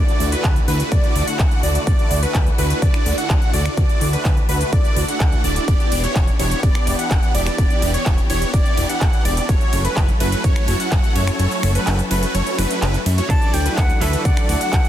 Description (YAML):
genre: EDM, festival progressive house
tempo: 126 BPM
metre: 4/4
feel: straight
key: D major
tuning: A4 = 440 Hz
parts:
  - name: warm studio string section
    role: sustained chords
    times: 0.0-14.9 s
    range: D3 to A4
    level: -30 LUFS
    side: left 2 dB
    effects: sidechain pumping
  - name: wide unison lead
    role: arpeggios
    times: 0.0-14.9 s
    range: B4 to F#5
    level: -25 LUFS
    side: equal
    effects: lush chorus, sidechain pumping, digital delay
  - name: supersaw chords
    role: riff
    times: 0.0-14.9 s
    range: A3 to F#5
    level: -25 LUFS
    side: right 1 dB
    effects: phaser, sidechain pumping, digital delay
  - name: fat analog bass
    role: bass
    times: 0.0-14.8 s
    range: D1 to F#2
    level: -21 LUFS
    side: equal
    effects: sidechain pumping
  - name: downlifter and swell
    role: sound effects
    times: 0.0-1.9, 12.7-13.3 s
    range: none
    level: -39 LUFS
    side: equal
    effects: none
  - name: big-room dance drum kit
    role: drums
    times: 0.1-14.9 s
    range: finger snaps, handclaps, hi-hat, ride cymbal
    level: -27 LUFS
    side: equal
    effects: overdrive, studio reverb
  - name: electronic kick drum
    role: drums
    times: 0.4-14.8 s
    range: none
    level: -17 LUFS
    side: equal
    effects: studio reverb
  - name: breathy bright concert flute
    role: melody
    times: 13.3-14.9 s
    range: E5 to A5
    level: -25 LUFS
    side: left 2 dB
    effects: digital delay
  - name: direct-recorded clean electric guitar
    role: accompaniment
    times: 13.3-14.9 s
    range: F#3 to A4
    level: -27 LUFS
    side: right 4 dB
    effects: tremolo, sidechain pumping
room: little or no reverb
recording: dense, heavily limited modern master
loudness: -15 LUFS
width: side -12 dB against mid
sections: 0.0-14.9 A section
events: kick drops out 11.4-13.3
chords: 0.0 Dadd9; 5.7 Em7; 9.5 F#m7; 13.3 Dadd9